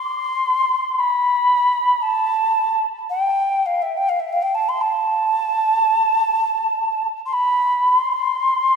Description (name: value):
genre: world meditative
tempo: free time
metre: none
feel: none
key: A minor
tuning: A4 = 438 Hz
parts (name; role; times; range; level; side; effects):
- breathy alto ocarina; solo; 0.0-8.8 s; E5 to C6; -17 LUFS; equal; ping-pong delay
room: wet plate reverb, RT60 3.3 s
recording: dreamy mix soaked in reverb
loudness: -17 LUFS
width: side -6 dB against mid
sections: 0.0-8.8 A section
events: none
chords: none